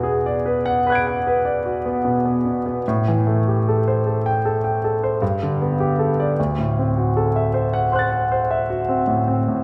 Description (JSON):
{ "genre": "classical, impressionist solo piano", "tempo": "49-53 BPM (dotted quarters)", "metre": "9/8", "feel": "rubato", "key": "unclear", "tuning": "A4 = 440 Hz", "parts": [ { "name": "clear grand piano", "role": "solo", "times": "0.0-9.6 s", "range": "D2 to D7", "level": "-20 LUFS", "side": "equal", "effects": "none" } ], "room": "wet scoring stage reverb, RT60 1.6 s", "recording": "none", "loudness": "-20 LUFS", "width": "mono", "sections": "0.0-9.6 A section", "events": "none", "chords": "0.0 E9; 2.8 Am7; 5.2 Gadd9; 6.4 D9", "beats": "0.43 1.64 | 2.84 4.04 5.21 | 6.38 7.53 8.68" }